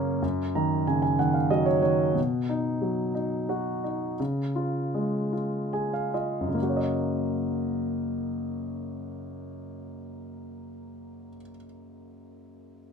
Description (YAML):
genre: folk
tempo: 67-93 BPM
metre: 3/4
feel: straight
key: F# major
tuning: A4 = 440 Hz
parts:
  - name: warm concert grand piano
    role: accompaniment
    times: 0.0-12.9 s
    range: F#2 to A#5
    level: -26 LUFS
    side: equal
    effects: none
room: light reverb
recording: minimal, uncompressed stereo recording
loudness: -25 LUFS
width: side -6 dB against mid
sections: 0.0-6.6 A section; 6.6-11.9 B section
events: slowing down 2.2-6.6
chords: 0.2 D#m7/F#; 2.2 B; 4.2 C#; 6.6 F#6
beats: | 0.23 0.88 1.53 | 2.17 2.83 3.50 | 4.20 4.93 5.72 | 6.58 7.47 8.36 | 9.25 10.14 11.03